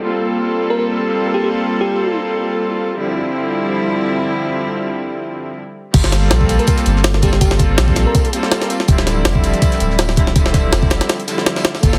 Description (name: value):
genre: drum and bass, jungle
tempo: 163 BPM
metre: 4/4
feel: swing 54% on 16ths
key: G minor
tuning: A4 = 442 Hz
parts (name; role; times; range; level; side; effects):
- rich chamber string section; sustained chords; 0.0-12.0 s; D3 to A4; -21 LUFS; equal; low-pass filter
- bell-like FM electric piano; melody; 0.7-2.2, 6.6-8.3 s; G4 to Bb4; -26 LUFS; equal; chorus, vintage 12-bit sampler grit, dub echo
- saturated sub bass; bass; 5.9-12.0 s; D1 to Bb1; -18 LUFS; equal; none
- cloth-damped thuddy drum kit; drums; 5.9-12.0 s; hi-hat, snare drum, tambourine; -33 LUFS; equal; none
- jungle sampler-style drum kit; drums; 5.9-12.0 s; crash cymbal, hi-hat, kick drum, snare drum; -17 LUFS; equal; none
room: light reverb, small room ambience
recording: heavily compressed radio sound, multiband compression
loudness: -16 LUFS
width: mono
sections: 0.0-5.9 A section; 5.9-12.0 B section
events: stop 5.6-5.9; drop 5.9-12.0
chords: 0.1 Gm11; 3.0 Dm11; 5.9 Gm11; 8.9 Dm11